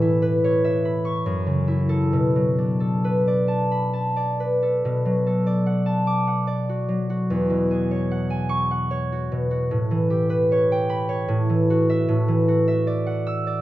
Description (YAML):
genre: classical, solo harp piece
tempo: 65-76 BPM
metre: 3/4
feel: rubato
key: B dorian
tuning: A4 = 440 Hz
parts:
  - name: concert harp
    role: solo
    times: 0.0-13.6 s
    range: E2 to E6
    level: -19 LUFS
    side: equal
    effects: none
room: moderate recital hall reverb, RT60 1.5 s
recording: dark, warm production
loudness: -20 LUFS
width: side -15 dB against mid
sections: 0.0-4.8 A section; 4.8-13.6 B section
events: none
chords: 0.0 Aadd9; 1.2 F#m7; 2.1 Bm7; 7.3 E69; 9.7 A9; 11.3 F#m7/A; 12.1 Esus2/A